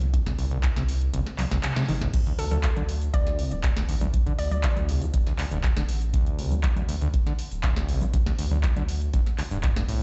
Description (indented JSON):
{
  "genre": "acid house",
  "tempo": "120 BPM",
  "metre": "4/4",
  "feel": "straight",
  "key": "unclear",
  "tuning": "A4 = 441 Hz",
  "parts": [
    { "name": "overdriven acid bass", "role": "riff", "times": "0.0-10.0 s", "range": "C2 to Eb3", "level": "-32 LUFS", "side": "equal", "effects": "distortion, sidechain pumping" },
    { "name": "saturated sub bass", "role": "bass", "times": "0.0-10.0 s", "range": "D1 to D2", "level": "-30 LUFS", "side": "equal", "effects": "tube saturation, sidechain pumping" },
    { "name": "booming analog drum machine", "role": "drums", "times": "0.0-10.0 s", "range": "congas, crash cymbal, handclaps, hi-hat, snare drum, toms", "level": "-36 LUFS", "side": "equal", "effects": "none" },
    { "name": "electronic kick drum", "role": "drums", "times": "0.1-9.7 s", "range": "none", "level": "-27 LUFS", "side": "equal", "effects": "none" },
    { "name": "egg shaker", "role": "percussion", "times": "2.1-9.9 s", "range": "none", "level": "-57 LUFS", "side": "equal", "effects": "none" },
    { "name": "hollow square pluck", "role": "melody", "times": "2.4-4.6 s", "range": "A4 to D5", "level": "-38 LUFS", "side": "equal", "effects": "chorus, tape echo" }
  ],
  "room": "light reverb, digital ambience",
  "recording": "played on a big sound system in a bare room, large studio reverb, nothing above 7.9 kHz",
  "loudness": "-25 LUFS",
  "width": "mono",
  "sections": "0.0-2.1 A section; 2.1-10.0 B section",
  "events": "kick drops out 1.1-2.1; drum fill 1.4-2.1; band accent 1.6; drop 2.1-10.0",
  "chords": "0.0 C5; 2.1 D5"
}